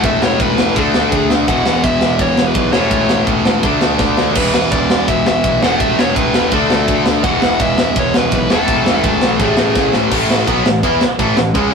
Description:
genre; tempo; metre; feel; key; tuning
punk rock; 167 BPM; 4/4; straight; A major; A4 = 438 Hz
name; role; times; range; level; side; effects
overdriven electric guitar; melody; 0.0-9.9 s; A4 to F#5; -19 LUFS; equal; none
sludgy distorted guitar; riff; 0.0-11.7 s; E2 to E4; -15 LUFS; left 1 dB; overdrive
fuzz picked electric bass; bass; 0.0-11.7 s; E1 to E2; -22 LUFS; equal; overdrive
tight metal drum kit; drums; 0.0-11.6 s; crash cymbal, kick drum, ride cymbal, snare drum; -17 LUFS; equal; none
room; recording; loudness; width
light reverb; rough rehearsal-room recording; -12 LUFS; side -5 dB against mid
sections
0.0-10.1 A section; 10.1-11.7 B section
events
drum fill 4.0-4.4, 9.8-10.1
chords
0.0 A5/E; 0.8 D5; 1.5 E5; 2.7 A/E; 3.6 D5; 4.4 E5; 5.6 A5/E; 6.5 D5; 7.2 E5; 8.5 A5/E; 9.4 A5; 10.1 A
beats
| 0.04 0.40 0.76 1.12 | 1.48 1.84 2.20 2.56 | 2.92 3.28 3.64 4.00 | 4.36 4.72 5.08 5.44 | 5.80 6.16 6.52 6.88 | 7.24 7.60 7.96 8.32 | 8.68 9.04 9.40 9.76 | 10.12 10.48 10.84 11.20 | 11.56

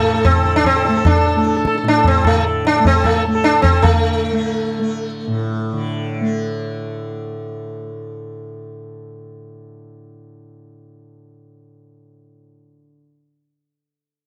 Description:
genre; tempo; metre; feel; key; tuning
indian classical, Hindustani; 152 BPM; 7/4; straight; unclear; A4 = 440 Hz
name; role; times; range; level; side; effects
sitar; melody; 0.0-7.9 s; A3 to A4; -19 LUFS; equal; none
tanpura; drone; 0.0-12.9 s; A2 to A3; -26 LUFS; equal; none
tabla; percussion; 0.2-4.0 s; none; -19 LUFS; equal; none
room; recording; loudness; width
light reverb; dry, close 1970s-style studio recording; -17 LUFS; mono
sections
0.0-3.8 A section; 3.8-6.6 B section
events
speeding up 0.0-6.6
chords
none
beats
0.24 0.65 | 1.05 1.45 1.85 2.25 2.65 3.04 3.44 | 3.83 4.23 4.62 5.01 5.40 5.79 6.18

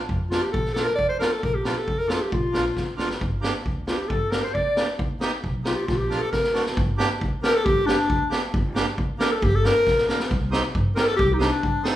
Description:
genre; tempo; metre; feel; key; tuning
klezmer; 135 BPM; 2/4; straight; Bb major, G minor from 6.8 s; A4 = 440 Hz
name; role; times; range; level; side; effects
upright bass; bass; 0.1-11.8 s; G1 to G2; -29 LUFS; equal; none
street-band drum kit; drums; 0.1-12.0 s; kick drum, snare drum; -26 LUFS; equal; none
warm clarinet; melody; 0.3-11.8 s; D4 to D5; -23 LUFS; left 1 dB; none
accordion; accompaniment; 0.3-12.0 s; A3 to Bb4; -29 LUFS; right 3 dB; none
warm clarinet; second line; 3.9-11.8 s; D4 to D5; -29 LUFS; left 2 dB; none
room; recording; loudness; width
wet large studio reverb, RT60 0.9 s; band playing live in one room; -20 LUFS; side -13 dB against mid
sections
0.0-6.8 A section; 6.8-12.0 B section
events
drum fill 2.8-3.2, 5.9-6.8, 9.9-10.3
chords
0.0 Bb; 3.2 Gm; 5.0 Eb; 5.9 Bb; 6.3 D; 6.8 Gm; 10.3 Cm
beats
0.08 | 0.53 0.97 | 1.42 1.87 | 2.31 2.76 | 3.21 3.65 | 4.10 4.54 | 4.99 5.43 | 5.87 6.32 | 6.76 7.20 | 7.65 8.09 | 8.53 8.97 | 9.41 9.86 | 10.30 10.74 | 11.18 11.62

